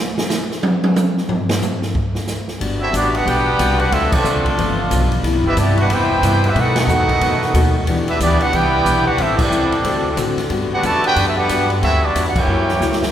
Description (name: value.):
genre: jazz, big band swing.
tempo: 182 BPM.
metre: 4/4.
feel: swing 62% on 8ths.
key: G major.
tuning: A4 = 440 Hz.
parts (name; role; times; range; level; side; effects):
open jazz drum kit; drums; 0.2-13.1 s; crash cymbal, hi-hat, kick drum, ride cymbal, snare drum, toms; -21 LUFS; equal; none.
picked steel-string acoustic guitar; accompaniment; 2.6-13.0 s; G2 to G4; -22 LUFS; left 4 dB; none.
mellow saxophone section; sustained chords; 2.6-13.1 s; B2 to G4; -27 LUFS; left 1 dB; none.
upright bass; bass; 2.6-13.1 s; G1 to B2; -20 LUFS; equal; none.
warm trumpet section; melody; 2.8-13.0 s; B3 to A5; -18 LUFS; right 1 dB; none.
muted trombone section; second line; 2.8-13.0 s; B2 to G4; -25 LUFS; right 2 dB; none.
room: wet church reverb, RT60 2.8 s.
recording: recorded in a church or concert hall.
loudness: -14 LUFS.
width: side -10 dB against mid.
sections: 0.0-2.6 A section; 2.6-13.1 B section.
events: drum solo 0.0-2.6; band accent 4.1, 6.7, 9.3, 12.3; drum fill 12.8-13.1.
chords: 0.0 N.C.; 2.6 Gmaj7; 3.9 Dm7; 4.6 G7; 5.2 Cmaj7; 6.6 B7; 7.9 Em7; 9.2 Am7; 9.8 D7; 10.5 Gmaj7; 12.5 F#7b9.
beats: 0.30 0.63 0.95 | 1.28 1.61 1.94 2.27 | 2.60 2.93 3.26 3.59 | 3.92 4.25 4.58 4.91 | 5.23 5.56 5.89 6.22 | 6.55 6.88 7.21 7.54 | 7.87 8.20 8.53 8.85 | 9.18 9.51 9.84 10.17 | 10.50 10.83 11.15 11.48 | 11.81 12.14 12.47 12.80.